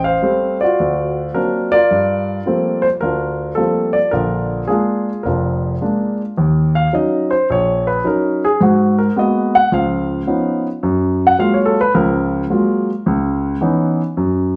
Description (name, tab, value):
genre	solo jazz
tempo	108 BPM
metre	4/4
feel	swing 68% on 8ths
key	Eb minor from 6.4 s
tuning	A4 = 440 Hz
part	dark grand piano	solo	0.0-14.6 s	F1 to Gb5	-17 LUFS	equal	none
room	wet large studio reverb, RT60 0.8 s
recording	band playing live in one room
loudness	-17 LUFS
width	mono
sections	0.0-6.4 A section; 6.4-14.6 B section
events	grand piano solo 6.4-14.6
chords	0.0 Am7b5; 0.8 D7alt; 1.9 Gm11; 4.1 Bb7; 6.4 Ebm7; 8.6 Abm9; 9.7 Db9; 10.8 Gbmaj9; 13.0 Dbm9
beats	0.22 0.78 1.34 | 1.90 2.46 3.02 3.58 | 4.13 4.69 5.25 5.81 | 6.37 6.92 7.48 8.04 | 8.60 9.15 9.71 10.27 | 10.82 11.38 11.94 12.49 | 13.05 13.61 14.16